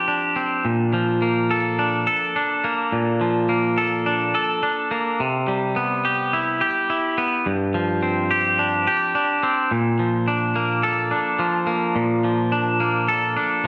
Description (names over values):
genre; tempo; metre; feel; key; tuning
rock; 106 BPM; 4/4; straight; unclear; A4 = 438 Hz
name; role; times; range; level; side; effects
twangy electric guitar; solo; 0.0-13.7 s; G2 to A4; -21 LUFS; equal; spring reverb, slapback echo
room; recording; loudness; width
moderate lush hall reverb, RT60 1.6 s; none; -21 LUFS; mono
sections
0.0-9.7 A section; 9.7-13.7 B section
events
build-up 0.0-9.7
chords
0.0 G7sus4; 0.7 Bbmaj7; 5.2 Cmaj7; 7.5 G7sus4; 9.7 Bbmaj7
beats
0.09 | 0.66 1.23 1.80 2.36 | 2.93 3.50 4.07 4.63 | 5.20 5.76 6.33 6.89 | 7.46 8.02 8.59 9.15 | 9.71 10.28 10.84 11.40 | 11.96 12.52 13.09 13.65